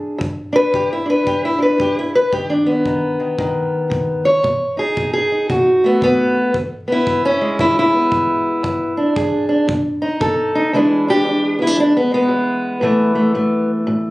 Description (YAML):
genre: acoustic country blues, solo or duo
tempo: 114 BPM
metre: 4/4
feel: swing 63% on 8ths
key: E mixolydian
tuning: A4 = 441 Hz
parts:
  - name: fingerpicked steel-string acoustic guitar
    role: melody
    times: 0.0-14.1 s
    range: E2 to C#5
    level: -14 LUFS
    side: equal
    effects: none
  - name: kick drum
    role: drums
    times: 0.2-10.4 s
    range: none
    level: -28 LUFS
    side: equal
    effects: none
room: light reverb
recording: recorded on a phone in the room, studio reverb, compression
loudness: -14 LUFS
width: side -19 dB against mid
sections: 0.0-10.7 A section; 10.7-14.1 B section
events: steel-string acoustic guitar solo 10.7-14.1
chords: 0.0 E7(no3); 2.3 B; 6.5 E7; 9.7 B7; 10.7 E7; 12.8 A5